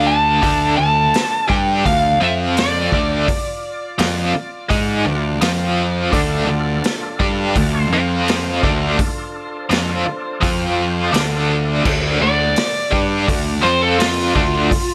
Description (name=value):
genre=blues rock power trio and southern rock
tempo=84 BPM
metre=4/4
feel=straight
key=D minor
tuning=A4 = 442 Hz
part: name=overdriven slide guitar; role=melody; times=0.0-14.9 s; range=F4 to A5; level=-23 LUFS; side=equal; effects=none
part: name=overdriven tonewheel organ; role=sustained chords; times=0.0-11.8 s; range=C4 to D5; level=-33 LUFS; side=equal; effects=none
part: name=biting overdriven guitar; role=riff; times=0.0-14.7 s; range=D3 to G#4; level=-22 LUFS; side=equal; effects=tremolo
part: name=fuzz picked electric bass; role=bass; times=0.0-14.8 s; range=D2 to G#2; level=-22 LUFS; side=equal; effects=overdrive
part: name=vintage drum kit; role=drums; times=0.4-14.9 s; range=crash cymbal, hi-hat, kick drum, snare drum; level=-24 LUFS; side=equal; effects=none
room=moderate club reverb, RT60 0.7 s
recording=none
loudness=-17 LUFS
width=mono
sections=0.0-11.8 A section; 11.8-14.9 B section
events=electric slide guitar solo 11.8-14.9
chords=0.0 Dm; 2.2 F5; 2.9 Dm; 5.4 F5; 6.1 Dm; 7.9 F5; 8.6 Dm; 10.4 F5; 11.1 Dm; 11.8 D5; 13.6 F5; 14.3 Dm